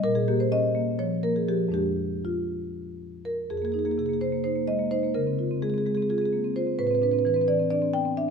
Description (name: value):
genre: classical, contemporary piece for solo marimba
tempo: 233-263 BPM (eighths)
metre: 7/8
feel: rubato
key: F minor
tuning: A4 = 440 Hz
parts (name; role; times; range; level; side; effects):
- marimba with soft mallets; solo; 0.0-8.3 s; F2 to G5; -24 LUFS; equal; none
room: moderate recital hall reverb, RT60 1.5 s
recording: none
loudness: -23 LUFS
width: side -6 dB against mid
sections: 0.0-3.5 A section; 3.5-8.3 B section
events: none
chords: 0.0 Bbm; 1.7 Fm6; 3.5 Fm7; 5.2 Dbmaj7; 6.8 Amadd9